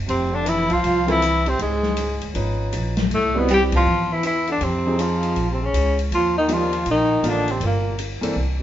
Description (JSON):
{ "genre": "jazz, small-group swing and bop", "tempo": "159 BPM", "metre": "4/4", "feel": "swing 64% on 8ths", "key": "unclear", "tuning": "A4 = 440 Hz", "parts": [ { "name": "upright bass", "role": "bass", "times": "0.0-8.6 s", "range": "F1 to F2", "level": "-25 LUFS", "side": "equal", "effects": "none" }, { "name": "warm tenor saxophone", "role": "melody", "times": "0.1-8.0 s", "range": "Ab3 to G4", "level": "-21 LUFS", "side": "left 1 dB", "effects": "none" }, { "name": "mellow baritone saxophone", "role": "second line", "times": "0.1-8.0 s", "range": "Ab2 to G3", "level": "-24 LUFS", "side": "right 2 dB", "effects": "none" }, { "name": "open jazz drum kit", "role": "drums", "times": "0.1-8.5 s", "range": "hi-hat, kick drum, ride cymbal, snare drum", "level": "-29 LUFS", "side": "left 2 dB", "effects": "none" }, { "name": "warm concert grand piano", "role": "accompaniment", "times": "1.1-8.4 s", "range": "E3 to Cb5", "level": "-26 LUFS", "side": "equal", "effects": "none" } ], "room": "moderate stone room reverb, RT60 1.1 s", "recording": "band playing live in one room, nothing above 7.5 kHz", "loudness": "-18 LUFS", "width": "side -12 dB against mid", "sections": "0.0-6.1 A section; 6.1-8.6 B section", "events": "band accent 3.7", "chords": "0.1 Fmaj7(no3); 1.6 Db9; 3.1 Cmaj7; 4.6 Fm7; 5.4 Bbmadd9; 6.1 Ebmaj9; 7.6 Gm" }